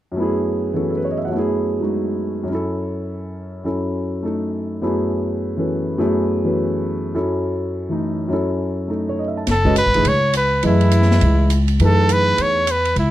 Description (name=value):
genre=modal jazz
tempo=206 BPM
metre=4/4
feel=swing 61% on 8ths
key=F# dorian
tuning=A4 = 439 Hz
part: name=warm concert grand piano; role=accompaniment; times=0.1-12.6 s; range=F#2 to A5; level=-20 LUFS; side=equal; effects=none
part: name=clear trumpet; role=melody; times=9.5-13.1 s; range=E4 to C#5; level=-18 LUFS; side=equal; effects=none
part: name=upright bass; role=bass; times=9.5-13.1 s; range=F#1 to F#2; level=-16 LUFS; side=equal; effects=none
part: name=open jazz drum kit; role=drums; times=9.5-13.0 s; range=hi-hat, kick drum, ride cymbal, snare drum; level=-26 LUFS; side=equal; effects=none
room=small room ambience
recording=dry, close 1970s-style studio recording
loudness=-17 LUFS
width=side -14 dB against mid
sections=0.2-9.5 A section; 9.5-13.1 B section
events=none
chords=0.2 F#m11; 2.5 A/F#; 4.8 F#m11; 7.1 A/F#; 9.5 F#m11; 11.8 A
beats=| 0.16 0.45 0.74 1.03 | 1.32 1.62 1.91 2.20 | 2.49 2.78 3.07 3.36 | 3.65 3.94 4.23 4.53 | 4.82 5.11 5.40 5.69 | 5.98 6.27 6.56 6.85 | 7.14 7.44 7.73 8.02 | 8.31 8.60 8.89 9.18 | 9.47 9.77 10.05 10.35 | 10.64 10.93 11.22 11.51 | 11.80 12.09 12.38 12.67 | 12.96